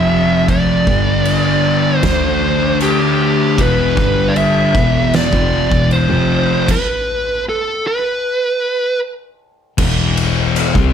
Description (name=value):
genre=stoner and doom metal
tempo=78 BPM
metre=4/4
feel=straight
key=E phrygian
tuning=A4 = 440 Hz
part: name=fuzz lead guitar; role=melody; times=0.0-9.0 s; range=G4 to E5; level=-17 LUFS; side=right 1 dB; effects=distortion, slapback echo
part: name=thick fuzz guitar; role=riff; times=0.0-10.9 s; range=E2 to D4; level=-18 LUFS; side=left 9 dB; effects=distortion
part: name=thick fuzz guitar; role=riff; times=0.0-6.7 s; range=E2 to D4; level=-18 LUFS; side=right 9 dB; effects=distortion
part: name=rich double bass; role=bass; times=0.0-10.9 s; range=E1 to D2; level=-20 LUFS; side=equal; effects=overdrive
part: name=oversized low-tuned drum kit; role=drums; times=0.5-10.9 s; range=crash cymbal, kick drum, ride cymbal, snare drum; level=-19 LUFS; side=equal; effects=none
room=light reverb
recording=none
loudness=-12 LUFS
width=side -8 dB against mid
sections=0.0-9.8 A section; 9.8-10.9 B section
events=stop 6.7-9.8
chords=0.0 F5; 0.9 G5; 2.0 D5; 3.6 E5; 4.0 G5; 4.7 E5; 6.1 F5; 7.1 N.C.; 9.8 E5